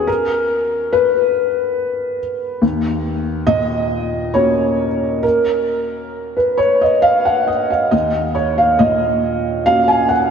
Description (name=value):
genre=neoclassical minimalist piano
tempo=69 BPM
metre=3/4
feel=rubato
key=Eb minor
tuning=A4 = 440 Hz
part: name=felt-muted upright piano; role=solo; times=0.0-10.3 s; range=Eb2 to Ab5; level=-14 LUFS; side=equal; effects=lush chorus
room=wet lush hall reverb, RT60 2.7 s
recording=dreamy mix soaked in reverb, cassette tape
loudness=-14 LUFS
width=side -7 dB against mid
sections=0.0-10.3 A section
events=none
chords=0.0 Bsus2; 2.6 Ebm7